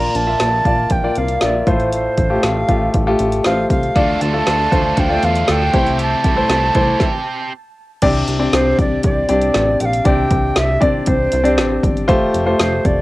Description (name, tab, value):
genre	piano-driven pop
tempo	118 BPM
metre	4/4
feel	straight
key	unclear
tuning	A4 = 440 Hz
part	mellow tenor recorder	melody	0.0-13.0 s	C5 to Bb5	-19 LUFS	right 2 dB	cassette tape
part	clear concert grand piano	accompaniment	0.0-13.0 s	A2 to E5	-18 LUFS	left 2 dB	none
part	chorused synth bass	bass	0.0-13.0 s	F1 to E2	-21 LUFS	equal	none
part	deep house drum kit	drums	0.1-13.0 s	crash cymbal, hi-hat, kick drum, snare drum	-19 LUFS	equal	cassette tape
part	biting overdriven guitar	riff	4.0-7.5 s	C3 to A4	-24 LUFS	right 3 dB	none
room	moderate booth ambience, RT60 0.2 s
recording	home recording on cassette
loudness	-13 LUFS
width	side -18 dB against mid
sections	0.0-8.0 A section; 8.0-13.0 B section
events	stop 7.0-8.0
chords	0.0 Bb; 1.7 F/A; 4.0 Dm; 5.7 C6; 8.0 Csus2; 12.1 Fadd9